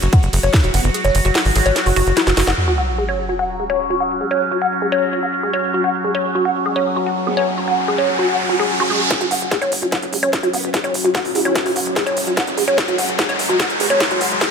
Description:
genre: psychedelic trance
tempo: 147 BPM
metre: 4/4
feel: straight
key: unclear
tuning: A4 = 440 Hz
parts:
  - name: overtone-sweeping drone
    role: sustained chords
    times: 0.0-14.5 s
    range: F#3 to F#4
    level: -22 LUFS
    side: left 1 dB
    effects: chorus, built-in reverb, sidechain pumping
  - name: woody wave-folded pluck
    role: riff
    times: 0.0-14.5 s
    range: E4 to F#5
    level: -19 LUFS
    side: moving between left 5 dB and right 3 dB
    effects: chorus, auto-pan, sidechain pumping, ping-pong delay
  - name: tight sequencer bass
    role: bass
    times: 0.0-2.5, 9.2-14.4 s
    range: E1 to G#1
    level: -21 LUFS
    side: equal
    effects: high-pass filter
  - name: garage drum kit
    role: drums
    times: 0.0-2.6, 9.1-14.5 s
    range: hi-hat, ride cymbal, snare drum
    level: -21 LUFS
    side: right 1 dB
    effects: none
  - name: electronic kick drum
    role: drums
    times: 0.1-0.6, 9.1-14.5 s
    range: none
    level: -19 LUFS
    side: equal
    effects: high-pass filter on kick, high-pass filter on room
  - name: formant-sweep wobble bass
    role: second line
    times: 0.7-2.1, 7.3-14.0 s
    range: F#3 to E4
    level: -29 LUFS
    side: right 4 dB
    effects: ensemble chorus, sidechain pumping, high-pass filter, digital delay
  - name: sub drop and riser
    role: sound effects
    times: 2.6-14.5 s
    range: none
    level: -23 LUFS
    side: equal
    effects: none
room: moderate lush hall reverb, RT60 2.0 s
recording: none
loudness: -15 LUFS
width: side -6 dB against mid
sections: 0.0-2.6 A section; 2.6-9.1 B section; 9.1-14.5 C section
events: drop 0.0-2.6; kick drops out 0.9-2.6; drum fill 2.2-2.6, 9.1-14.5; band accent 2.5; impact 2.6-4.2; riser 6.8-9.1, 9.1-14.5; build-up 9.1-14.5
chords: 0.0 F#5

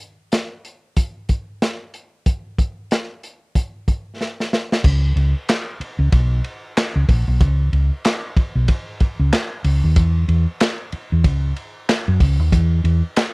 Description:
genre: funk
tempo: 94 BPM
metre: 4/4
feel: swing 60% on 16ths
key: unclear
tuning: A4 = 440 Hz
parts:
  - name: crunchy breakbeat drum kit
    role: drums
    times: 0.0-13.3 s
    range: crash cymbal, handclaps, hi-hat, kick drum, ride cymbal, snare drum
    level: -19 LUFS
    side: equal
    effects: none
  - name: hollow-body short-scale fingered electric bass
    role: bass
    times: 4.8-13.0 s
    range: A#1 to F#2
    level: -16 LUFS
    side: equal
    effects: none
room: little or no reverb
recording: dry, close 1970s-style studio recording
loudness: -17 LUFS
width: side -32 dB against mid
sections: 0.0-4.8 A section; 4.8-13.3 B section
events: drum fill 4.2-4.8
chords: none

